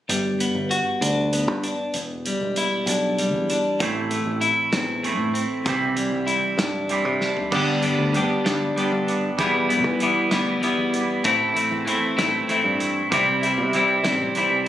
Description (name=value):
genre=indie rock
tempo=64 BPM (dotted quarters)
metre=6/8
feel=straight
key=G major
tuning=A4 = 439 Hz
part: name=overdriven semi-hollow guitar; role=riff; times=0.1-14.7 s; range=E2 to G4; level=-22 LUFS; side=left 2 dB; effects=none
part: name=picked electric bass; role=bass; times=0.1-14.7 s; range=E1 to E3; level=-28 LUFS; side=equal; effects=none
part: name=loose indie drum kit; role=drums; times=0.1-14.5 s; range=crash cymbal, hi-hat, kick drum, snare drum, toms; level=-28 LUFS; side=right 1 dB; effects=none
part: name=crunchy overdriven guitar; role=riff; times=3.8-14.7 s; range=G2 to E4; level=-26 LUFS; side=right 6 dB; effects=lush chorus, tape echo
room=light reverb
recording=recorded on a phone in the room, studio reverb, compression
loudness=-20 LUFS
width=side -12 dB against mid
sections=0.1-7.5 A section; 7.5-14.7 B section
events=drum fill 7.2-7.5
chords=0.1 Gmaj7; 2.0 Em7; 3.8 Am; 5.7 Cadd9; 7.5 G; 9.4 Em7; 11.2 Am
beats=| 0.09 1.02 | 1.95 2.88 | 3.81 4.74 | 5.67 6.60 | 7.53 8.46 | 9.39 10.32 | 11.25 12.18 | 13.11 14.04